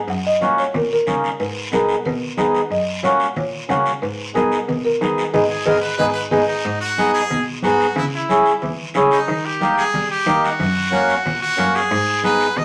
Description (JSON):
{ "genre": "latin, cumbia", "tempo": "183 BPM", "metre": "4/4", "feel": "straight", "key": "G# minor", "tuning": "A4 = 441 Hz", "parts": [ { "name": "buzzing marimba with soft mallets", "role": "melody", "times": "0.0-6.4 s", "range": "G#4 to G#5", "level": "-24 LUFS", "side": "equal", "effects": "none" }, { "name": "bright cello", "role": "bass", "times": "0.1-12.6 s", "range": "F#2 to G3", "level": "-29 LUFS", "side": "equal", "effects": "none" }, { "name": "congas", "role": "percussion", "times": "0.1-12.6 s", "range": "none", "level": "-31 LUFS", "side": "equal", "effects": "none" }, { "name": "guiro", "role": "percussion", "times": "0.1-12.6 s", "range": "none", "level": "-33 LUFS", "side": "equal", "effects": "none" }, { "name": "mellow accordion", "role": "accompaniment", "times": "0.4-12.5 s", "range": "A#3 to G#4", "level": "-21 LUFS", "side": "equal", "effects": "none" }, { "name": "brilliant trumpet", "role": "second line", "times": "5.5-12.6 s", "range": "D#4 to D#5", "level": "-24 LUFS", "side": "equal", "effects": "none" } ], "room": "wet studio reverb, RT60 0.8 s", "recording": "none", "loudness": "-19 LUFS", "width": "mono", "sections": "0.0-6.7 A section; 6.7-12.6 B section", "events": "band accent 5.3-6.7; drum fill 6.2-6.7; trumpet solo 6.7-12.6", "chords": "0.1 F#; 1.4 G#m; 2.7 F#; 4.0 G#m; 8.0 C#m; 9.3 D#; 10.6 F#; 11.9 G#m", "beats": "| 0.08 0.41 0.74 1.07 | 1.40 1.73 2.06 2.38 | 2.71 3.04 3.37 3.70 | 4.03 4.35 4.68 5.01 | 5.34 5.67 6.00 6.32 | 6.65 6.98 7.31 7.64 | 7.97 8.29 8.62 8.95 | 9.28 9.61 9.94 10.27 | 10.59 10.92 11.25 11.58 | 11.91 12.24 12.57" }